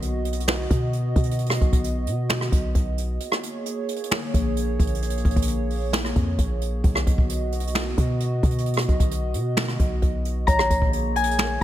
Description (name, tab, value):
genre	hip hop, trap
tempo	132 BPM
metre	4/4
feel	half-time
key	Bb phrygian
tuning	A4 = 440 Hz
part	hollow soft pad	sustained chords	0.0-11.6 s	Bb3 to D#5	-30 LUFS	right 1 dB	chorus
part	warm 808-style bass	bass	0.0-11.6 s	Bb1 to B2	-25 LUFS	equal	none
part	jazz brush drum kit	drums	0.0-11.6 s	finger snaps, hi-hat, kick drum, rim click, snare drum	-23 LUFS	equal	none
part	concert harp	melody	10.5-11.6 s	Ab5 to Bb5	-23 LUFS	left 4 dB	low-pass filter, ping-pong delay
part	hollow clarinet-like synth lead	second line	10.5-10.9 s	Db5	-30 LUFS	equal	chorus, ping-pong delay
room	light reverb, studio ambience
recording	none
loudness	-21 LUFS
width	side -12 dB against mid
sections	0.0-10.5 A section; 10.5-11.6 B section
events	break 3.2-4.1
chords	0.0 B; 3.2 Bbm7; 6.8 B; 10.5 Bbm7